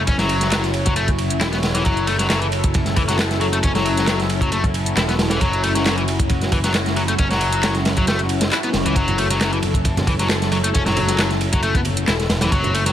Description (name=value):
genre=breakbeat, breaks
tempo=135 BPM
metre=4/4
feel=swing 53% on 16ths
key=F# minor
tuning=A4 = 440 Hz
part: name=phased analog pad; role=sustained chords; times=0.0-12.9 s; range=F#3 to C#5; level=-24 LUFS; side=left 1 dB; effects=phaser, chorus, sidechain pumping
part: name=modern bright picked electric bass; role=bass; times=0.0-12.9 s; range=E1 to C#2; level=-23 LUFS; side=equal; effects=none
part: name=overdriven electric guitar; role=riff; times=0.1-12.9 s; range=E3 to E4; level=-23 LUFS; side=left 2 dB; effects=tube saturation, vintage 12-bit sampler grit, digital delay
part: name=crunchy breakbeat drum kit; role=drums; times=0.1-12.9 s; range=kick drum, ride cymbal, snare drum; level=-21 LUFS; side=equal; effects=none
part: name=garage drum kit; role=drums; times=0.1-12.9 s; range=handclaps, hi-hat, ride cymbal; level=-26 LUFS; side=right 1 dB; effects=none
part: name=congas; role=percussion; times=9.1-12.7 s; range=none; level=-28 LUFS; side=right 3 dB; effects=none
room=light reverb, small room ambience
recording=none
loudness=-16 LUFS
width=side -11 dB against mid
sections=0.0-12.9 A section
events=none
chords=0.0 F#m7